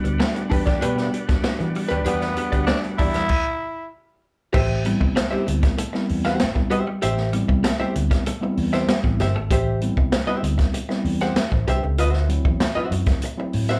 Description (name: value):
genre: funk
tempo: 97 BPM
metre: 4/4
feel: straight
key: A dorian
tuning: A4 = 440 Hz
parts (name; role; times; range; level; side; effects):
- archtop guitar, miked and amplified; accompaniment; 0.0-13.8 s; D4 to F#5; -29 LUFS; equal; none
- percussive tonewheel organ; sustained chords; 0.0-3.3 s; G3 to F#5; -36 LUFS; equal; fast rotary speaker, overdrive
- clean electric guitar; riff; 0.0-9.5 s; G3 to A3; -34 LUFS; equal; spring reverb, slapback echo
- mellow tine electric piano; stabs; 0.0-13.8 s; F#3 to E5; -30 LUFS; equal; none
- swinging big-band drum kit; drums; 0.0-13.8 s; crash cymbal, hi-hat, kick drum, snare drum; -25 LUFS; equal; none
- vintage muted fingered electric bass; bass; 0.1-13.8 s; G1 to E3; -26 LUFS; equal; none
- growling tenor saxophone; melody; 2.1-3.9 s; B3 to E4; -27 LUFS; equal; slapback echo
room: light reverb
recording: live gig heard through the venue's PA, club ambience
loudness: -22 LUFS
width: mono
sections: 0.0-4.5 A section; 4.5-13.8 B section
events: stop 3.3-4.5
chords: 0.0 Em7; 4.5 Am7; 12.0 D9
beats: 0.20 0.82 1.45 | 2.07 2.69 3.31 3.93 | 4.55 5.17 5.79 6.41 | 7.03 7.65 8.27 8.89 | 9.51 10.13 10.75 11.37 | 11.98 12.60 13.22